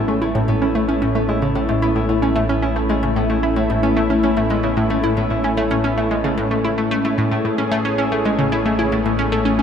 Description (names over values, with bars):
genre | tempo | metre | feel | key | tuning
ambient, sequencer-driven space music | 112 BPM | 4/4 | straight | A major | A4 = 441 Hz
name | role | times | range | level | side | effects
lush unison pad | sustained chords | 0.0-9.6 s | A3 to G#4 | -21 LUFS | equal | chorus
concert harp | arpeggios | 0.0-9.6 s | A2 to Db5 | -22 LUFS | left 3 dB | auto-pan, tape echo
analog pluck | riff | 0.0-9.6 s | A2 to E4 | -21 LUFS | right 1 dB | chorus, tape echo
round analog bass | bass | 0.0-9.6 s | A1 | -28 LUFS | equal | none
room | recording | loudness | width
wet cathedral reverb, RT60 5.8 s | in a vast, echoing space | -16 LUFS | side -8 dB against mid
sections
0.0-9.6 A section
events
none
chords
0.0 A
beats
0.35 | 0.88 1.42 1.96 2.49 | 3.03 3.56 4.10 4.63 | 5.17 5.71 6.24 6.78 | 7.31 7.85 8.38 8.92 | 9.46